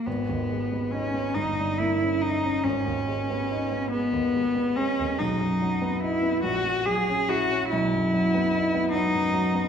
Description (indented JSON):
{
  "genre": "classical, romantic duo for cello and grand piano",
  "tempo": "47 BPM (dotted quarters)",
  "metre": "6/8",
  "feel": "rubato",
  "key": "G# minor",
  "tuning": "A4 = 438 Hz",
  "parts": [
    { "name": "clear cello", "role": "melody", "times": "0.0-9.7 s", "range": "B3 to G#4", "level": "-25 LUFS", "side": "equal", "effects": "none" },
    { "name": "warm baby grand piano", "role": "accompaniment", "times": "0.0-9.7 s", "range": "G1 to E4", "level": "-27 LUFS", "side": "equal", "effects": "none" }
  ],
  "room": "wet recital hall reverb, RT60 1.3 s",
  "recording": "recorded in a church or concert hall",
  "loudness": "-23 LUFS",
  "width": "side -7 dB against mid",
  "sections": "0.1-9.7 A section",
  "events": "none",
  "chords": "0.1 G#m; 1.4 D#7/G; 2.6 G#m; 5.2 B; 6.4 F#7/A#; 7.7 B",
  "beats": "| 0.06 1.36 | 2.64 3.92 | 5.19 6.45 | 7.72 8.94"
}